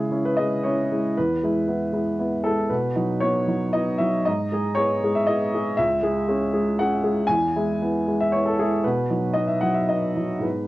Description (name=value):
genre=neoclassical minimalist piano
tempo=116 BPM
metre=3/4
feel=rubato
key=unclear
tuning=A4 = 440 Hz
part: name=warm baby grand piano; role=solo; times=0.0-10.7 s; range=C#2 to G#5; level=-20 LUFS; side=equal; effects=none
room=light reverb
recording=worn, warbling old tape, cassette tape, warbly pitch drift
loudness=-20 LUFS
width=side -17 dB against mid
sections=0.0-10.7 A section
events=none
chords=0.0 C#m; 1.2 E; 2.7 B; 4.3 G#m; 5.8 C#m; 7.3 E; 8.8 B